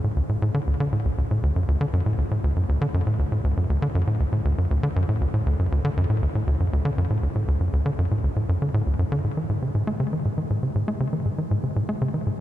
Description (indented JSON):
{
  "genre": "ambient",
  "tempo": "119 BPM",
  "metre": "4/4",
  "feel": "straight",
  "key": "D major, A major from 9.2 s",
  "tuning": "A4 = 440 Hz",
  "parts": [
    { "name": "tight sequencer bass", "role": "solo", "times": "0.0-12.3 s", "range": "D2 to A3", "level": "-21 LUFS", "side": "equal", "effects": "ping-pong delay" }
  ],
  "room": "wet huge ambient reverb, RT60 7.6 s",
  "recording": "dark, warm production",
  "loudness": "-21 LUFS",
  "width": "side -13 dB against mid",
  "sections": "0.0-9.2 A section; 9.2-12.4 B section",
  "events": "none",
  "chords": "none",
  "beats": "0.17 0.67 | 1.18 1.68 2.19 2.69 | 3.19 3.70 4.20 4.71 | 5.21 5.71 6.22 6.72 | 7.23 7.73 8.23 8.74 | 9.24 9.75 10.25 10.76 | 11.26 11.77 12.27"
}